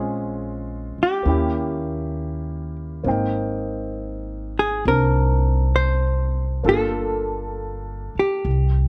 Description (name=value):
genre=jazz ballad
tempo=67 BPM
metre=4/4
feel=swing 68% on 8ths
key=unclear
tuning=A4 = 441 Hz
part: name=hollow-body jazz guitar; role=melody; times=0.0-8.9 s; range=G4 to C5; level=-26 LUFS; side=equal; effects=plate reverb
part: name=warm grand piano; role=accompaniment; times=0.0-8.5 s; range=Ab3 to G5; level=-29 LUFS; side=equal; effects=none
part: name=upright bass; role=bass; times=0.0-8.9 s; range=G1 to Eb2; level=-25 LUFS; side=equal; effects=none
room=little or no reverb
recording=dark, warm production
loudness=-23 LUFS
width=mono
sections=0.0-8.9 A section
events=none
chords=0.0 Bbm9; 1.3 Eb7b9; 3.1 Abmaj7; 6.7 Gm7